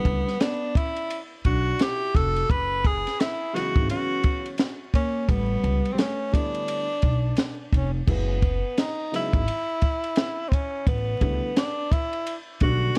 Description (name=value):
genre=hip hop, jazz-hop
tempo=86 BPM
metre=4/4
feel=swing 60% on 16ths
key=unclear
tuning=A4 = 440 Hz
part: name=breathy tenor saxophone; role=melody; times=0.0-13.0 s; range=B3 to B4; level=-30 LUFS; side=equal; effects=analog delay
part: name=mellow electric guitar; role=second line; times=0.0-7.7, 12.6-13.0 s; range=G3 to G#4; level=-35 LUFS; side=equal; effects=analog chorus
part: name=dark baby grand piano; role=accompaniment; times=0.0-13.0 s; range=C#3 to E4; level=-35 LUFS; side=equal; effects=none
part: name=upright bass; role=bass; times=0.1-12.9 s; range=E#1 to C#2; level=-29 LUFS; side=equal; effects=none
part: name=compact cocktail drum kit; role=drums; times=0.1-13.0 s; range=crash cymbal, hi-hat, kick drum, ride cymbal, snare drum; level=-26 LUFS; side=equal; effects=none
room=light reverb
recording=vinyl crackle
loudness=-25 LUFS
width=mono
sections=0.0-8.1 A section; 8.1-13.0 A section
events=none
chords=0.0 A9sus4; 2.5 F#9sus4; 5.3 A9sus4; 8.1 F#9sus4; 10.9 A9sus4